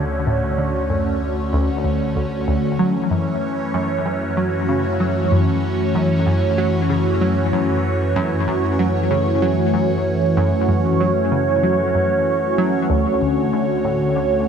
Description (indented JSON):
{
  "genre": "ambient, sequencer-driven space music",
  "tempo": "95 BPM",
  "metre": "4/4",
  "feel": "straight",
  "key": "F# minor",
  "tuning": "A4 = 438 Hz",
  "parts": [
    { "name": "phased analog pad", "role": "sustained chords", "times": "0.0-14.5 s", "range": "D3 to C#5", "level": "-18 LUFS", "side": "right 1 dB", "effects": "phaser, chorus, shimmer reverb" },
    { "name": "tight sequenced synth", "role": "riff", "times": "0.0-14.3 s", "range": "D2 to F#3", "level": "-22 LUFS", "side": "equal", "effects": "chorus, ping-pong delay" },
    { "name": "warm sub bass", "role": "bass", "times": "0.0-14.5 s", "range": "D2 to F#2", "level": "-26 LUFS", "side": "left 1 dB", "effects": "none" }
  ],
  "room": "wet plate reverb, RT60 2.4 s",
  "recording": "dark, warm production",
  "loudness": "-17 LUFS",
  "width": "side -7 dB against mid",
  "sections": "0.0-14.5 A section",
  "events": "none",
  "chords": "0.0 Dmaj7; 2.8 F#m7; 12.9 Dmaj7",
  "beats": "| 0.27 0.90 1.53 2.16 | 2.79 3.42 4.05 4.69 | 5.32 5.95 6.58 7.21 | 7.84 8.48 9.11 9.74 | 10.37 11.00 11.63 12.27 | 12.90 13.53 14.16"
}